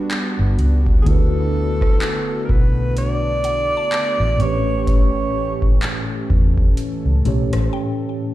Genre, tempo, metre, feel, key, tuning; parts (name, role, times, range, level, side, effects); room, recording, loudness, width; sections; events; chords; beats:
contemporary R&B; 63 BPM; 4/4; swing 58% on 16ths; D major; A4 = 441 Hz
mellow tine electric piano; accompaniment; 0.0-8.3 s; A2 to C#5; -24 LUFS; equal; medium stereo tremolo
warm analog pad; sustained chords; 0.0-8.3 s; E3 to A4; -28 LUFS; equal; chorus, sidechain pumping
booming analog drum machine; drums; 0.1-7.7 s; handclaps, hi-hat, kick drum, rim click; -18 LUFS; equal; overdrive
vintage muted fingered electric bass; bass; 0.4-7.7 s; G1 to E2; -19 LUFS; equal
warm alto saxophone; melody; 1.0-5.8 s; G#4 to D5; -22 LUFS; right 1 dB; ping-pong delay
mallet-like synth pluck; texture; 3.4-8.3 s; F#5 to A5; -36 LUFS; left 2 dB; chorus, ping-pong delay
little or no reverb; played on a big sound system in a bare room, stone room reverb; -16 LUFS; side -15 dB against mid
0.0-8.3 A section
break 7.7-8.3
0.0 Gmaj7; 1.1 D6; 4.4 A7
0.11 | 1.06 2.02 2.97 3.92 | 4.87 5.83 6.78 7.73